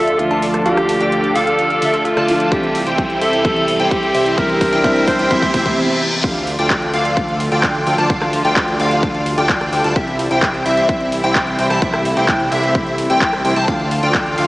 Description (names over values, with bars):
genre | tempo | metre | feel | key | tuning
EDM, festival progressive house | 129 BPM | 4/4 | straight | D minor | A4 = 440 Hz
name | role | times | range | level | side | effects
breathy alto saxophone | melody | 0.0-5.7 s | F4 to C5 | -18 LUFS | equal | diffuse ambient delay
felt-muted upright piano | accompaniment | 0.0-6.3 s | C3 to E5 | -22 LUFS | equal | lush chorus, sidechain pumping, diffuse ambient delay
warm studio string section | sustained chords | 0.0-14.5 s | C3 to F4 | -24 LUFS | equal | sidechain pumping
plucky unison lead | arpeggios | 0.0-14.5 s | E5 to A5 | -21 LUFS | equal | phaser, lush chorus, sidechain pumping, diffuse ambient delay
supersaw chords | riff | 0.0-14.5 s | C4 to A5 | -20 LUFS | equal | ensemble chorus, sidechain pumping, low-pass filter, diffuse ambient delay
fat analog bass | bass | 0.0-14.5 s | C2 to D2 | -24 LUFS | equal | sidechain pumping
riser and reverse cymbal | sound effects | 1.2-6.2 s | none | -27 LUFS | left 1 dB | none
big-room dance drum kit | drums | 0.1-14.5 s | crash cymbal, handclaps, hi-hat, rim click | -23 LUFS | equal | overdrive
electronic kick drum | drums | 2.5-14.2 s | none | -22 LUFS | equal | overdrive
room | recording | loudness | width
wet lush hall reverb, RT60 2.3 s | dreamy mix soaked in reverb, small speaker sound | -13 LUFS | side -19 dB against mid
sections
0.0-6.2 A section; 6.2-14.5 B section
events
build-up 0.0-6.2; filter sweep on supersaw synth 0.0-6.2; filter sweep on digital synth lead 0.0-6.2; riser 1.2-6.2; drum fill 2.5-5.8; reverse cymbal 5.3-6.2; drop 6.2-14.5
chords
0.0 Dm; 2.5 C; 6.2 Dm; 10.0 C; 13.7 Dm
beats
0.19 | 0.66 1.12 1.59 2.05 | 2.52 2.98 3.45 3.91 | 4.38 4.84 5.31 5.77 | 6.24 6.70 7.17 7.63 | 8.10 8.56 9.03 9.49 | 9.96 10.43 10.89 11.36 | 11.82 12.29 12.75 13.21 | 13.68 14.14